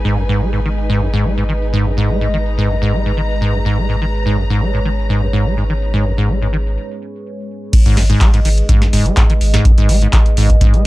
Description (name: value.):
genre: acid house.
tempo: 125 BPM.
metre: 4/4.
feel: straight.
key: G# minor.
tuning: A4 = 439 Hz.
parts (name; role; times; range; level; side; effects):
dark analog pad; sustained chords; 0.0-10.9 s; G#3 to D#5; -25 LUFS; right 1 dB; chorus, phaser, sidechain pumping.
warm sub bass; bass; 0.0-10.5 s; F#1 to G#1; -18 LUFS; equal; sidechain pumping.
dark symphonic string section; texture; 0.0-6.8 s; D#4 to A#5; -28 LUFS; left 2 dB; sidechain pumping.
acid bass, saw; riff; 0.1-10.8 s; F#2 to G#3; -17 LUFS; equal; analog chorus.
booming analog drum machine; drums; 7.7-10.8 s; crash cymbal, handclaps, hi-hat, snare drum; -21 LUFS; equal; low-pass filter on hats, low-pass filter on cymbals, low-pass filter on snare.
electronic kick drum; drums; 7.7-10.7 s; none; -11 LUFS; equal; none.
room: little or no reverb.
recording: dark, warm production.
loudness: -12 LUFS.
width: side -18 dB against mid.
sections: 0.0-7.7 A section; 7.7-10.9 B section.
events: break 6.8-7.7; drop 7.7-10.9.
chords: 0.0 G#m.